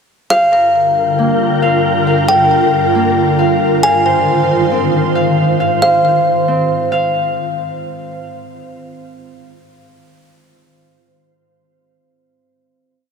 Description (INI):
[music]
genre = hip hop, atmospheric cloud-rap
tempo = 136 BPM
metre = 4/4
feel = half-time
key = Ab lydian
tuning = A4 = 436 Hz
[part]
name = kalimba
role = melody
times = 0.3-6.4 s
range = F5 to Ab5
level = -15 LUFS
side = left 1 dB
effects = ping-pong delay
[part]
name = ethereal airy pad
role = sustained chords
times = 0.6-5.6 s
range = G2 to C5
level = -16 LUFS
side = equal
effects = ensemble chorus, built-in reverb
[part]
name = Celtic harp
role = arpeggios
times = 0.3-9.5 s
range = Bb3 to F5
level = -19 LUFS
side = right 1 dB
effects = ping-pong delay
[part]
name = wind-like tuned noise texture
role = texture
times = 0.8-3.8 s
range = F4 to G5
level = -24 LUFS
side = left 1 dB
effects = built-in reverb
[sound]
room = light reverb, studio ambience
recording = none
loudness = -11 LUFS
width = side -6 dB against mid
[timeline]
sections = 0.3-7.4 breakdown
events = none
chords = 0.3 Gm7; 3.8 Ab6